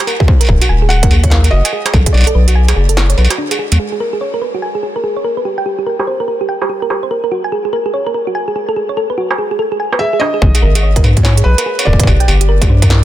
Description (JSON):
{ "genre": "IDM", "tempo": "145 BPM", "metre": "4/4", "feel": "swing 62% on 16ths", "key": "unclear", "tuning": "A4 = 440 Hz", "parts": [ { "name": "thumb-piano-like synth pluck", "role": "arpeggios", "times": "0.0-13.0 s", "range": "Ab3 to Ab5", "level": "-17 LUFS", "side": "right 2 dB", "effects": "chorus, ping-pong delay" }, { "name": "industrial drum kit", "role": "drums", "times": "0.1-13.0 s", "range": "hi-hat, snare drum, struck metal", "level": "-18 LUFS", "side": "right 2 dB", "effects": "low-pass filter on hats, low-pass filter on perc, low-pass filter on snare, digital delay" }, { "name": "electronic kick drum", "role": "drums", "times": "0.2-2.1, 10.4-12.9 s", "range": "none", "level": "-11 LUFS", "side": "equal", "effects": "distortion" }, { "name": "round analog bass", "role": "bass", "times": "0.5-3.8, 10.4-13.0 s", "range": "Eb1 to Ab2", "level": "-10 LUFS", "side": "equal", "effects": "none" }, { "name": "felt-muted upright piano", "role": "melody", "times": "0.9-3.3, 10.0-13.0 s", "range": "Cb5 to Gb5", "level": "-22 LUFS", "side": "equal", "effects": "digital delay" } ], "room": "little or no reverb", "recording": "dense, heavily limited modern master", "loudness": "-11 LUFS", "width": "side -13 dB against mid", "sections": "0.0-3.8 A section; 3.8-10.4 B section; 10.4-13.0 C section", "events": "kick drops out 2.1-3.8; filter sweep on synth arpeggio sound 3.8-10.4", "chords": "0.5 Ebm; 1.9 Bm9; 3.8 Abmadd9; 5.5 Gm; 7.1 Gbadd9; 8.6 Bm7; 10.4 Abmadd9; 12.1 Gm" }